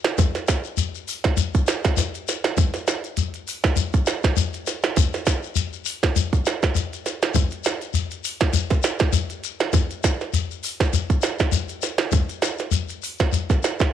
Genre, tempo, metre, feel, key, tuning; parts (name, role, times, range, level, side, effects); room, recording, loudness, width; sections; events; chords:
afrobeat; 100 BPM; 4/4; swing 55% on 16ths
minimal click drum kit; drums; 0.0-13.9 s; hi-hat, kick drum, snare drum; -22 LUFS; right 2 dB; overdrive
shekere; percussion; 0.1-13.9 s; -25 LUFS; left 6 dB
little or no reverb; 1960s-style stereo; -20 LUFS; side -10 dB against mid
0.0-13.9 A section